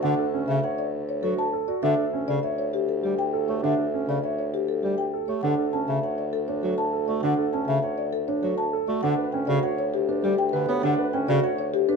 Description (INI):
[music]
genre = classical, minimalist pattern music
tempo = 100 BPM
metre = 3/4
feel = straight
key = D major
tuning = A4 = 441 Hz
[part]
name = marimba with soft mallets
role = melody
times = 0.0-12.0 s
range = G4 to A5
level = -27 LUFS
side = left 7 dB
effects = none
[part]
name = clear bass clarinet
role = accompaniment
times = 0.0-11.4 s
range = C#3 to B3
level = -29 LUFS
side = right 2 dB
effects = none
[part]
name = dark baby grand piano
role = arpeggios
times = 0.0-12.0 s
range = C#4 to C#5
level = -28 LUFS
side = right 6 dB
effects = none
[part]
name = mellow bassoon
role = bass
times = 0.0-12.0 s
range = D2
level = -30 LUFS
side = right 2 dB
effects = none
[sound]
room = light reverb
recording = minimal, uncompressed stereo recording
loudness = -23 LUFS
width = side -5 dB against mid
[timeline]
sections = 0.0-12.0 A section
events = none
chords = 0.0 D; 1.8 A7sus4/D; 5.4 D; 9.0 Gmaj7/D